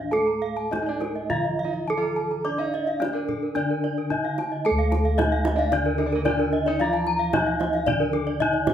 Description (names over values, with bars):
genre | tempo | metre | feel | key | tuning
Balinese gamelan | 100-112 BPM | 4/4 | straight | D pelog | A4 = 441 Hz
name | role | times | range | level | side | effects
gamelan-type bronze metallophone | melody | 0.0-8.7 s | D4 to D5 | -26 LUFS | equal | none
gamelan-type bronze metallophone | accompaniment | 0.0-8.7 s | D3 to D4 | -33 LUFS | left 1 dB | none
gamelan-type bronze metallophone | arpeggios | 0.0-8.7 s | Bb4-20c to Bb5-20c | -30 LUFS | right 5 dB | none
gamelan-type bossed gongs | bass | 0.0-8.7 s | D2 to D5 | -29 LUFS | equal | none
gamelan-type bronze metallophone | arpeggios | 0.1-8.5 s | A4-30c to D6 | -28 LUFS | left 4 dB | none
kendang | percussion | 0.1-8.7 s | none | -31 LUFS | right 3 dB | none
open-back banjo | second line | 0.8-8.3 s | Bb3-20c to A4-30c | -34 LUFS | right 5 dB | none
room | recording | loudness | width
moderate large studio reverb, RT60 0.9 s | band playing live in one room | -22 LUFS | side -9 dB against mid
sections
0.0-4.7 A section; 4.7-8.7 B section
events
none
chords
none